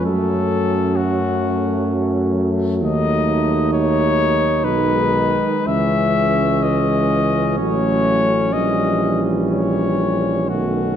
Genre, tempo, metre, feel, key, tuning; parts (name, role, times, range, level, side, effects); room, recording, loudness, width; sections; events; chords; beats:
classical, hymn-like piece for brass band; 64 BPM; 3/4; uneven beats, rubato; A4 = 440 Hz
warm cornet; melody; 0.0-11.0 s; F#4 to E5; -21 LUFS; left 6 dB
warm flugelhorn; second line; 0.0-11.0 s; C#4 to D#4; -24 LUFS; right 10 dB
warm trombone; accompaniment; 0.0-11.0 s; D#3 to F#3; -26 LUFS; right 4 dB
warm trombone section; accompaniment; 0.0-11.0 s; G3 to A3; -24 LUFS; left 2 dB
warm tuba; bass; 0.0-11.0 s; A1 to F#2; -21 LUFS; equal
moderate concert hall reverb, RT60 2.1 s; dark, warm production; -16 LUFS; side -9 dB against mid
0.0-11.0 A section
0.1 F#m; 2.8 D#dim; 4.7 G#m/B; 5.7 C#m; 7.6 F#m/A; 8.5 A#dim7
| 0.07 0.96 1.90 | 2.83 3.73 4.65 | 5.67 6.64 7.58 | 8.54 9.51 10.49